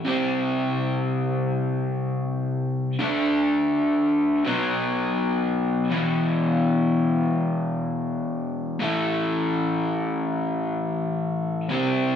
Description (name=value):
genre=rock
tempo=82 BPM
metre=4/4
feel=straight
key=unclear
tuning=A4 = 439 Hz
part: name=crunchy overdriven guitar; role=solo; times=0.0-12.2 s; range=E2 to D4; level=-22 LUFS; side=left 1 dB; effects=none
room=moderate studio reverb, RT60 0.5 s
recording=band playing live in one room, small room reverb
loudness=-22 LUFS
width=side -8 dB against mid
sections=0.0-12.2 A section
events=none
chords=0.1 C5; 3.0 D5; 4.4 B5; 5.9 E5; 8.8 A5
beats=| 0.06 0.79 1.52 2.25 | 2.98 3.71 4.44 5.17 | 5.90 6.62 7.35 8.08 | 8.81 9.54 10.26 10.99 | 11.72